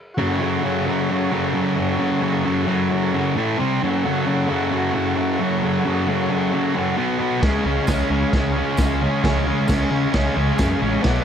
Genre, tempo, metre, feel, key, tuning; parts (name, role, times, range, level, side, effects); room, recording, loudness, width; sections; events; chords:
garage rock duo or trio; 133 BPM; 4/4; straight; F# harmonic minor; A4 = 441 Hz
overdriven combo organ; sustained chords; 0.1-11.2 s; F#4 to F#5; -29 LUFS; equal
thick fuzz guitar; riff; 0.2-11.2 s; F#2 to C#4; -19 LUFS; equal; distortion
growling fingered electric bass; bass; 7.4-11.2 s; A1 to C#3; -24 LUFS; equal; overdrive
crunchy breakbeat drum kit; drums; 7.4-11.2 s; crash cymbal, kick drum, snare drum; -23 LUFS; equal; vintage 12-bit sampler grit
tambourine; percussion; 7.9-10.7 s; -41 LUFS; right 2 dB
moderate stone room reverb, RT60 1.4 s, studio ambience; cassette tape; -18 LUFS; side -8 dB against mid
0.2-11.2 A section
stop 0.0
0.2 F#m; 3.4 A5; 3.6 C5; 3.8 F#m; 7.0 B5; 7.4 C#